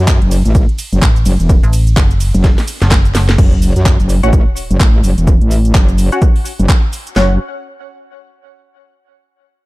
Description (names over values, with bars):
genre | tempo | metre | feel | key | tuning
bass house | 127 BPM | 4/4 | swing 60% on 16ths | F# minor | A4 = 441 Hz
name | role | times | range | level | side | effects
metallic wobble bass | bass | 0.0-7.4 s | E1 to F#2 | -12 LUFS | equal | chorus, sidechain pumping
big-room dance drum kit | drums | 0.1-7.3 s | handclaps, kick drum, snare drum | -11 LUFS | equal | none
garage drum kit | drums | 0.1-7.1 s | crash cymbal, handclaps, hi-hat, ride cymbal, shaker, snare drum | -20 LUFS | equal | none
metallic FM bass | bass | 1.0-3.4 s | F#1 to A1 | -12 LUFS | equal | overdrive, sidechain pumping
sub drop | sound effects | 3.5-5.3 s | none | -21 LUFS | equal | none
band-passed chord stab | stabs | 4.2-7.3 s | C#4 to F#5 | -20 LUFS | left 1 dB | phaser, vintage 12-bit sampler grit, sidechain pumping, ping-pong delay
room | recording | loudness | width
digital ambience | dark, warm production | -9 LUFS | side -20 dB against mid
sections
0.0-3.4 A section; 3.4-7.2 B section; 7.2-9.1 C section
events
drop 0.0-3.4; drum fill 2.4-3.4; impact 3.4-5.3; filter sweep on synth stab 3.4-7.2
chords
0.0 Esus4 (rootless); 3.4 F#5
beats
0.08 0.55 1.02 | 1.49 1.97 2.44 2.91 | 3.38 3.85 4.33 4.80 | 5.27 5.75 6.22 6.69 | 7.16